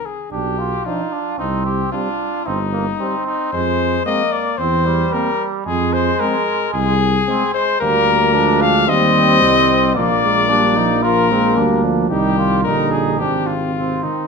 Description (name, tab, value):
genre	classical, brass quintet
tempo	112 BPM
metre	4/4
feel	rubato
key	C minor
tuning	A4 = 440 Hz
part	bright trumpet	melody	0.0-14.3 s	Eb4 to F5	-18 LUFS	left 8 dB	none
part	warm flugelhorn	second line	0.3-14.3 s	G3 to F4	-21 LUFS	right 6 dB	none
part	mellow tuba	bass	0.3-14.0 s	G1 to F2	-21 LUFS	right 4 dB	none
part	clear French horn	accompaniment	0.9-14.1 s	F3 to D4	-23 LUFS	left 3 dB	none
part	warm trombone	accompaniment	0.9-14.3 s	C3 to Bb3	-24 LUFS	right 3 dB	none
room	moderate large studio reverb, RT60 1.2 s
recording	minimal, uncompressed stereo recording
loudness	-14 LUFS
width	side -5 dB against mid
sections	0.0-14.3 A section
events	none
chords	0.3 G7/B; 1.4 Cm; 3.5 Fm; 4.6 C7/E; 5.7 Fm; 7.8 Bb7/D; 8.9 Eb; 10.0 Bb7; 12.1 Cm; 13.2 Fm/Ab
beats	0.32 0.85 | 1.39 1.93 2.46 3.00 | 3.53 4.06 4.59 5.13 | 5.67 6.20 6.74 7.27 | 7.81 8.34 8.88 9.42 | 9.96 10.50 11.04 11.57 | 12.11 12.65 13.20 13.76